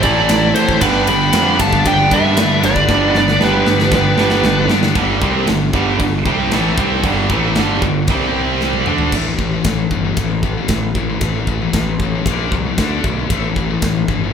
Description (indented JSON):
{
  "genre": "heavy metal",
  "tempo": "115 BPM",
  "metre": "4/4",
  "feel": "straight",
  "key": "unclear",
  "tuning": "A4 = 440 Hz",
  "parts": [
    { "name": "high-gain lead guitar", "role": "melody", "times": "0.0-4.7 s", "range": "B4 to B5", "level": "-17 LUFS", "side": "right 1 dB", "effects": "distortion" },
    { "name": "high-gain lead guitar", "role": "second line", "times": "0.0-4.7 s", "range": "G4 to G5", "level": "-25 LUFS", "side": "right 2 dB", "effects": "distortion" },
    { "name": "scooped high-gain guitar", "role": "riff", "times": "0.0-14.3 s", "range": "G2 to E4", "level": "-19 LUFS", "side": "left 6 dB", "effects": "distortion" },
    { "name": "tight distorted guitar", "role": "riff", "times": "0.0-9.1 s", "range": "G2 to D4", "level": "-18 LUFS", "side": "right 5 dB", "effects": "distortion" },
    { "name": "fuzz picked electric bass", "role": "bass", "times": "0.0-14.3 s", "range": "G1 to A2", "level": "-20 LUFS", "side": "equal", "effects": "overdrive" },
    { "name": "tight metal drum kit", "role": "drums", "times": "0.0-14.2 s", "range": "crash cymbal, kick drum, ride cymbal, snare drum, toms", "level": "-20 LUFS", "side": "equal", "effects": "none" }
  ],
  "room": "moderate large studio reverb, RT60 1.1 s",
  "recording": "band playing live in one room",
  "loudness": "-13 LUFS",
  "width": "side -7 dB against mid",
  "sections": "0.0-5.0 A section; 5.0-9.1 B section; 9.1-14.3 C section",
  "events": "drum fill 2.9-5.0, 8.6-9.1",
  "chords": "0.0 Am; 0.8 G; 5.0 G5; 8.1 C5; 8.9 D5; 9.1 A5; 12.3 Bb5; 12.8 D5; 13.3 A5"
}